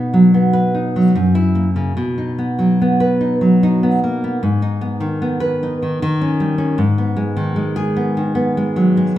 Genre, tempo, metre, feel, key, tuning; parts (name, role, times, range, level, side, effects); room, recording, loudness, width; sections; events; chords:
romantic piece for solo classical guitar; 74 BPM; 3/4; rubato; A4 = 438 Hz
nylon-string guitar; solo; 0.0-9.2 s; F#2 to B4; -14 LUFS; equal
wet recital hall reverb, RT60 1.6 s; minimal, uncompressed stereo recording; -14 LUFS; side -13 dB against mid
0.0-9.2 A section
0.0 B; 1.2 F#7; 2.0 B; 4.4 G#m; 6.0 D#7; 6.8 G#m